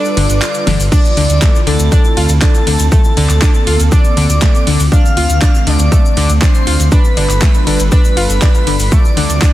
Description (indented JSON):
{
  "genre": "progressive house",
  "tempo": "120 BPM",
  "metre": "4/4",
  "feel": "straight",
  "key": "D minor",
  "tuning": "A4 = 440 Hz",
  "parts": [
    { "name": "soft octave-layered synth lead", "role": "melody", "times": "0.0-9.5 s", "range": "A4 to F5", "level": "-21 LUFS", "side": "equal", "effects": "chorus, tape echo" },
    { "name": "airy dreamy lead", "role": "second line", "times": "0.0-9.5 s", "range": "A5 to F6", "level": "-24 LUFS", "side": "equal", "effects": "chorus, phaser, sidechain pumping, dub echo" },
    { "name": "airy breathy pad", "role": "sustained chords", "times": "0.0-9.5 s", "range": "D3 to B4", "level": "-21 LUFS", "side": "right 1 dB", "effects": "chorus, sidechain pumping" },
    { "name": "tube shaker", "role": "percussion", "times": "0.0-9.5 s", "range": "none", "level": "-25 LUFS", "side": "left 3 dB", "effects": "none" },
    { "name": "analog pluck", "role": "arpeggios", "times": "0.2-9.5 s", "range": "D3 to F4", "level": "-19 LUFS", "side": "left 2 dB", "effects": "chorus, sidechain pumping, dub echo" },
    { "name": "dark detuned saw bass", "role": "bass", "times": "0.2-9.4 s", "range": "G1 to D2", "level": "-13 LUFS", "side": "equal", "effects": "sidechain pumping" },
    { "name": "pop drum kit", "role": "drums", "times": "0.2-9.5 s", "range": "crash cymbal, handclaps, hi-hat, ride cymbal, snare drum", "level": "-20 LUFS", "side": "right 1 dB", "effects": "none" },
    { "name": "electronic kick drum", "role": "drums", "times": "0.9-9.5 s", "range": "none", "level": "-10 LUFS", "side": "equal", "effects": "overdrive" }
  ],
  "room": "digital ambience",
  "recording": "dense, heavily limited modern master",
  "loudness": "-9 LUFS",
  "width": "side -14 dB against mid",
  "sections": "0.0-9.5 A section",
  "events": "break 0.0-0.9; drum fill 0.7",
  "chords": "0.0 G7; 0.9 Dm7; 2.9 Bbmaj7/D; 4.9 Dm7; 6.9 G7; 8.9 Dm7",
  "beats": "0.42 | 0.92 1.42 1.92 2.42 | 2.92 3.42 3.92 4.42 | 4.92 5.42 5.92 6.42 | 6.92 7.42 7.92 8.42 | 8.92 9.42"
}